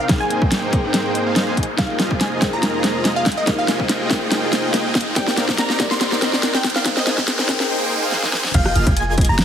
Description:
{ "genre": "future bass", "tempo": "142 BPM", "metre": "4/4", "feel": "half-time", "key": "F dorian", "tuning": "A4 = 440 Hz", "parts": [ { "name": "wide unison pluck", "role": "melody", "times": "0.0-9.4 s", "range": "Eb5 to C6", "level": "-25 LUFS", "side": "equal", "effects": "cassette tape, sidechain pumping, tape echo" }, { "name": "glassy digital keys", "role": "accompaniment", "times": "0.0-8.6 s", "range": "Eb4 to G5", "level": "-26 LUFS", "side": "left 2 dB", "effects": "chorus, sidechain pumping, ping-pong delay" }, { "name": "airy breathy pad", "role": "sustained chords", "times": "0.0-7.7 s", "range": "F2 to D5", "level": "-33 LUFS", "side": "equal", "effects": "chorus, sidechain pumping" }, { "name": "supersaw chords", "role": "riff", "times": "0.0-9.4 s", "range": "Bb3 to C6", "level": "-23 LUFS", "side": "equal", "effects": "sidechain pumping, low-pass filter" }, { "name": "riser", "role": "sound effects", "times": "0.0-8.5 s", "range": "none", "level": "-28 LUFS", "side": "equal", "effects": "none" }, { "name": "dubstep drum kit", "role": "drums", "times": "0.1-9.4 s", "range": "crash cymbal, hi-hat, rim click, snare drum", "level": "-20 LUFS", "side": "equal", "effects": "overdrive" }, { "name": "electronic kick drum", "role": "drums", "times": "0.1-9.3 s", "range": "none", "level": "-20 LUFS", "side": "equal", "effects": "none" }, { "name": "airy dreamy lead", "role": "arpeggios", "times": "8.5-9.4 s", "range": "F6 to Bb6", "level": "-27 LUFS", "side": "right 3 dB", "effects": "chorus, phaser, sidechain pumping" }, { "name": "warm 808-style bass", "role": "bass", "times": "8.5-9.4 s", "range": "F1", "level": "-20 LUFS", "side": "equal", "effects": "sidechain pumping" } ], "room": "moderate digital room reverb, RT60 1.3 s, digital ambience", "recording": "heavily compressed radio sound, multiband compression, high-pass filter", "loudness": "-16 LUFS", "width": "side -9 dB against mid", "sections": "0.0-8.5 A section", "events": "build-up 0.0-8.5; drum fill 0.0-7.7, 8.1-8.5; riser 0.0-8.5; filter sweep on supersaw synth 0.0-8.5; filter sweep 0.0-8.5", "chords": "0.1 Abmaj9; 1.8 Fm11; 5.2 Cm9; 6.9 Abmaj9; 8.5 Fm11", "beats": "| 0.09 0.52 0.94 1.36 | 1.78 2.21 2.63 3.05 | 3.48 3.90 4.32 4.74 | 5.17 5.59 6.01 6.43 | 6.86 7.28 7.70 8.12 | 8.54 8.97 9.39" }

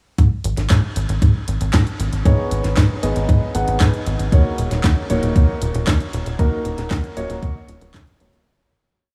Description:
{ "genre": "italo disco", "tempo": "116 BPM", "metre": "4/4", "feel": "straight", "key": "Eb minor", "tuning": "A4 = 440 Hz", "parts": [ { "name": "tight sequencer bass", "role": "bass", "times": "0.2-8.4 s", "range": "Eb1 to Ab2", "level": "-21 LUFS", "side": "equal", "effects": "tape echo" }, { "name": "electronic kick drum", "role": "drums", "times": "0.2-8.0 s", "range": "none", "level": "-20 LUFS", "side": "equal", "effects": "studio reverb" }, { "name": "house drum kit", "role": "drums", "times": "0.2-8.4 s", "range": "handclaps, hi-hat, snare drum", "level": "-30 LUFS", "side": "equal", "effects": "overdrive, studio reverb" }, { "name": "dark concert grand piano", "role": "stabs", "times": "2.3-8.4 s", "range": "Bb3 to Gb5", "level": "-26 LUFS", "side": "equal", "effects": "subtle chorus, tape echo" } ], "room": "light reverb", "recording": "small room ambience", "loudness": "-19 LUFS", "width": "mono", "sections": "0.2-8.5 verse", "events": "fade-out 5.7-8.5", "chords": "0.2 Abm; 4.3 Ebm7", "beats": "| 0.18 0.70 1.22 1.74 | 2.25 2.77 3.29 3.81 | 4.32 4.84 5.36 5.88 | 6.39 6.91 7.43 7.94" }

